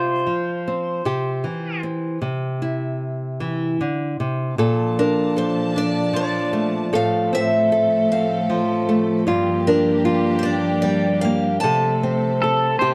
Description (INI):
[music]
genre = acoustic folk-pop ballad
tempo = 51 BPM (dotted quarters)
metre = 6/8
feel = straight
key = F major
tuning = A4 = 440 Hz
[part]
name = pedal steel guitar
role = second line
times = 0.0-1.8, 12.4-12.9 s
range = A4 to C5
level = -25 LUFS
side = equal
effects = none
[part]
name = nylon-string guitar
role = accompaniment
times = 0.0-12.9 s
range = G2 to A4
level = -23 LUFS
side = equal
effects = none
[part]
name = warm chamber string section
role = sustained chords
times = 4.6-12.9 s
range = A2 to A5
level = -26 LUFS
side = equal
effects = none
[part]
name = picked old ladder-braced acoustic guitar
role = melody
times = 5.0-12.7 s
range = Bb4 to A5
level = -24 LUFS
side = equal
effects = none
[sound]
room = moderate plate reverb, RT60 2.6 s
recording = dark, warm production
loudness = -21 LUFS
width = mono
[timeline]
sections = 0.0-2.2 A section; 2.2-4.6 B section; 4.6-12.9 C section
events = pedal steel guitar solo 0.0-2.2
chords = 0.0 Csus4; 1.1 C; 4.6 Bbmaj7; 6.9 F/A; 9.3 Gm7; 11.6 F/C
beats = 1.05 | 2.23 3.41 | 4.58 5.75 | 6.93 8.10 | 9.27 10.45 | 11.62 12.79